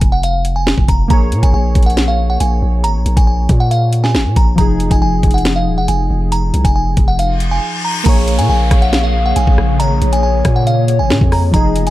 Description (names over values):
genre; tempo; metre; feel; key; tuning
hip hop, drill; 138 BPM; 4/4; half-time; Bb minor; A4 = 439 Hz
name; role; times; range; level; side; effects
delicate synth tine bell; melody; 0.0-11.9 s; F5 to Bb5; -19 LUFS; equal; chorus, low-pass filter, tape echo
long sustained 808-style bass; bass; 0.0-11.9 s; Eb1 to Bb2; -15 LUFS; equal; none
drill drum kit; drums; 0.0-11.9 s; crash cymbal, hi-hat, kick drum, rim click, snare drum; -14 LUFS; equal; none
warbly lo-fi synth keys; accompaniment; 1.1-11.9 s; F3 to Db5; -22 LUFS; equal; chorus, low-pass filter
reverse cymbal and downlifter; sound effects; 7.3-11.5 s; none; -26 LUFS; left 2 dB; none
gliding portamento lead; second line; 8.1-11.9 s; Db5 to F5; -22 LUFS; left 6 dB; chorus, tape echo
ethereal airy pad; sustained chords; 9.0-11.9 s; Db3 to Ab4; -22 LUFS; equal; ensemble chorus, built-in reverb
room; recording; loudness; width
digital ambience; dark, warm production; -11 LUFS; side -15 dB against mid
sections
0.0-8.1 A section; 8.1-11.9 B section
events
reverse cymbal 7.3-8.1; drums muted 7.6-8.1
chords
0.0 Fm; 1.1 Bbm7; 4.6 Fm7; 8.1 Bbm7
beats
0.23 0.67 | 1.10 1.54 1.97 2.41 | 2.84 3.28 3.71 4.14 | 4.58 5.01 5.45 5.88 | 6.32 6.75 7.19 7.62 | 8.06 8.49 8.93 9.36 | 9.80 10.23 10.67 11.10 | 11.54